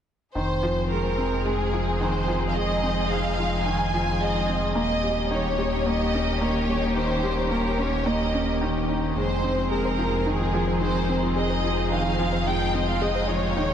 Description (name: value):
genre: electronica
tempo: 109 BPM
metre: 4/4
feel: straight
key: F minor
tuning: A4 = 439 Hz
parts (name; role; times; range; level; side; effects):
- warm studio violin section; melody; 0.4-13.7 s; Ab4 to Ab5; -27 LUFS; equal; none
- muted studio string section; sustained chords; 0.4-13.7 s; Eb3 to Ab4; -30 LUFS; equal; none
- felt-muted upright piano; riff; 0.4-13.7 s; Eb3 to Eb4; -27 LUFS; left 1 dB; ping-pong delay
- dark detuned saw bass; bass; 0.4-13.7 s; Eb1 to F1; -29 LUFS; equal; tube saturation
- warbly dusty pluck; arpeggios; 9.2-13.7 s; Eb4 to C5; -34 LUFS; left 1 dB; chorus, vintage 12-bit sampler grit, ping-pong delay
room: wet huge ambient reverb, RT60 7.2 s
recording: dreamy mix soaked in reverb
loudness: -22 LUFS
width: side -9 dB against mid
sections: 0.4-13.7 A section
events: none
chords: 0.4 Fm7; 4.8 Eb7; 9.2 Fm7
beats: | 0.36 0.91 1.46 2.01 | 2.56 3.11 3.66 4.21 | 4.76 5.31 5.86 6.41 | 6.96 7.51 8.06 8.61 | 9.16 9.71 10.26 10.81 | 11.37 11.92 12.47 13.02 | 13.57